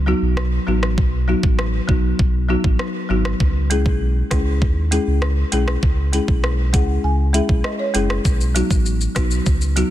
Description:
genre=dancehall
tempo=99 BPM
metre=4/4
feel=straight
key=C# minor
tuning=A4 = 440 Hz
part: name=sub bass with octave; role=bass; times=0.0-9.8 s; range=F#1 to D#2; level=-19 LUFS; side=equal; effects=none
part: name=folk marimba with soft mallets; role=accompaniment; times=0.1-9.9 s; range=F#3 to G#5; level=-22 LUFS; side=left 2 dB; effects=none
part: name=island pop drum kit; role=drums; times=0.4-9.9 s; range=hi-hat, kick drum, rim click, shaker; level=-20 LUFS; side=equal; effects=overdrive, vintage 12-bit sampler grit
room=digital ambience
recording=dense, heavily limited modern master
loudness=-16 LUFS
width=side -13 dB against mid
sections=0.0-9.9 A section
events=marimba fill 6.4-8.3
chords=0.0 B; 3.4 C#m; 8.3 B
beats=0.37 | 0.98 1.58 2.19 2.80 | 3.40 4.01 4.62 5.22 | 5.83 6.43 7.04 7.65 | 8.25 8.86 9.46

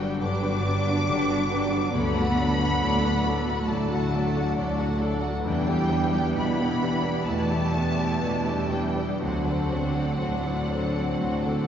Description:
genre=cinematic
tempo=59-70 BPM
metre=4/4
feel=rubato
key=unclear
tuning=A4 = 437 Hz
part: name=clear symphonic violin section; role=melody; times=0.0-11.7 s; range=F#5 to D6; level=-32 LUFS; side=left 1 dB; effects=none
part: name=warm symphonic violin section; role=second line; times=0.0-11.7 s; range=E4 to F#5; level=-32 LUFS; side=left 2 dB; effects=none
part: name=clear concert grand piano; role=accompaniment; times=0.0-11.7 s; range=D2 to B4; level=-30 LUFS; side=left 1 dB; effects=none
part: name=rich symphonic viola section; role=accompaniment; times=0.0-11.7 s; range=D3 to F#4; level=-33 LUFS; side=equal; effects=none
part: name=concert harp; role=arpeggios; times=0.0-11.7 s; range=G2 to B4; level=-31 LUFS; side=left 1 dB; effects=none
part: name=dark symphonic double bass section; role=bass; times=0.0-11.7 s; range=G1 to E2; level=-29 LUFS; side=right 1 dB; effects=none
part: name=rich symphonic cello section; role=bass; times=0.0-11.7 s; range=F#3 to D4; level=-30 LUFS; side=right 2 dB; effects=none
room=wet concert hall reverb, RT60 2.5 s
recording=heard from further back in the room, nothing above 7.6 kHz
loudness=-23 LUFS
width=side -9 dB against mid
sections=0.0-11.7 A section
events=none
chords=0.0 Gmaj7; 2.0 D; 5.5 Em7; 9.2 D7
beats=0.21 1.08 | 1.95 2.82 3.70 4.58 | 5.46 6.36 7.29 8.23 | 9.21 10.21 11.21

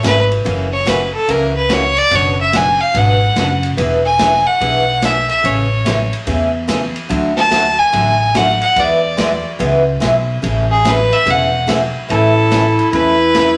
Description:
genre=country, western swing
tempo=144 BPM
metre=4/4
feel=swing 65% on 8ths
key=A major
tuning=A4 = 439 Hz
part: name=clear fiddle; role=melody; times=0.0-13.6 s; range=G#4 to A5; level=-17 LUFS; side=equal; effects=none
part: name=picked steel-string acoustic guitar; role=accompaniment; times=0.0-13.5 s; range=B2 to A4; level=-21 LUFS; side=equal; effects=none
part: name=upright bass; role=bass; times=0.0-13.6 s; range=E1 to E2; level=-22 LUFS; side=equal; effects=none
part: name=swinging big-band drum kit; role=drums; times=0.0-13.5 s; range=hi-hat, kick drum, ride cymbal, snare drum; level=-25 LUFS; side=equal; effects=none
part: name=warm clarinet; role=second line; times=12.1-13.6 s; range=E4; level=-16 LUFS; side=equal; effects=none
room=wet club reverb, RT60 0.6 s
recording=none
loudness=-14 LUFS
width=mono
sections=0.0-12.1 A section; 12.1-13.6 B section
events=fiddle solo 0.0-12.1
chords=0.5 F#7; 2.1 Bm/F#; 3.8 E7; 5.4 Amaj7; 7.1 D; 8.8 E; 10.4 Amaj7; 12.1 A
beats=0.04 | 0.45 0.87 1.28 1.70 | 2.11 2.53 2.94 3.36 | 3.77 4.19 4.60 5.02 | 5.43 5.85 6.27 6.68 | 7.10 7.51 7.93 8.35 | 8.76 9.18 9.60 10.01 | 10.43 10.84 11.26 11.68 | 12.09 12.51 12.93 13.34

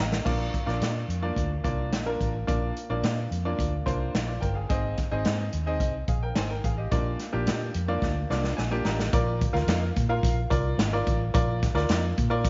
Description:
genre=uptempo 1960s-style soul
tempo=108 BPM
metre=4/4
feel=straight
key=Bb mixolydian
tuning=A4 = 441 Hz
part: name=bright grand piano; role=accompaniment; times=0.0-12.5 s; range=Bb3 to Bb5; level=-32 LUFS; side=equal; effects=none
part: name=vintage muted fingered electric bass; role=bass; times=0.0-12.5 s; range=G1 to Bb2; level=-31 LUFS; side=equal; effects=none
part: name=swinging big-band drum kit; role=drums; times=0.1-12.5 s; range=crash cymbal, hi-hat, kick drum, snare drum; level=-31 LUFS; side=equal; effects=none
room=moderate echo chamber reverb, RT60 2.9 s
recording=nothing above 7.5 kHz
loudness=-27 LUFS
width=mono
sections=0.3-9.1 A section; 9.1-12.5 B section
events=drum fill 0.0, 8.0-9.1; grand piano fill 8.0-9.1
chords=0.3 Bb; 4.7 Ab; 6.9 Bb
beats=| 0.26 0.81 1.37 1.93 | 2.48 3.04 3.59 4.15 | 4.70 5.26 5.81 6.37 | 6.92 7.47 8.03 8.58 | 9.13 9.69 10.24 10.79 | 11.34 11.89 12.45

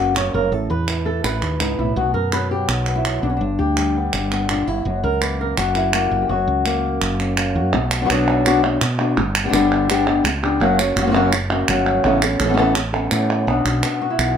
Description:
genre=flamenco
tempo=167 BPM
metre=4/4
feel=straight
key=unclear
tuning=A4 = 440 Hz
part: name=flamenco guitar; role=melody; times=0.0-14.4 s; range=F#2 to C#5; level=-19 LUFS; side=left 2 dB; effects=none
part: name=woody fretless electric bass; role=bass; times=0.0-14.4 s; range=F#1 to B2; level=-23 LUFS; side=right 1 dB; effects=none
part: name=palmas hand claps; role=percussion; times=0.2-14.4 s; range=none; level=-23 LUFS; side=right 4 dB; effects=none
room=moderate studio reverb, RT60 0.5 s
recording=none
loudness=-16 LUFS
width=side -8 dB against mid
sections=0.0-7.7 A section; 7.7-13.5 B section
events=none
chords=0.0 F#; 0.5 Aadd9; 2.0 B5; 3.4 G; 4.9 F#; 7.7 Bm; 9.2 G; 10.6 F#; 12.0 Aadd9; 13.5 Bm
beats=0.15 | 0.52 0.88 1.24 1.60 | 1.96 2.32 2.68 3.05 | 3.41 3.77 4.13 4.49 | 4.85 5.21 5.57 5.93 | 6.29 6.66 7.01 7.38 | 7.74 8.09 8.45 8.81 | 9.17 9.53 9.89 10.25 | 10.61 10.96 11.32 11.68 | 12.04 12.40 12.76 13.11 | 13.47 13.83 14.19

